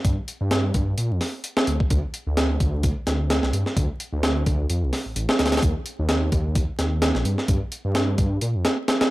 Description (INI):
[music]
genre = breakbeat, breaks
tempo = 129 BPM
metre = 4/4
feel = swing 56% on 16ths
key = D phrygian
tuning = A4 = 439 Hz
[part]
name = dark detuned saw bass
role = bass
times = 0.0-8.6 s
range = A1 to Bb2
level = -24 LUFS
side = equal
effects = tube saturation
[part]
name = breakbeat sampler-style drum kit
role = drums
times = 0.0-9.1 s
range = hi-hat, kick drum, snare drum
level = -22 LUFS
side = equal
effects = none
[sound]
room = digital ambience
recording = vinyl crackle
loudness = -20 LUFS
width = side -18 dB against mid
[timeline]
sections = 0.0-9.1 A section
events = none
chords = none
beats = | 0.05 0.52 0.98 1.45 | 1.91 2.38 2.84 3.31 | 3.77 4.24 4.70 5.17 | 5.63 6.10 6.56 7.03 | 7.49 7.96 8.42 8.89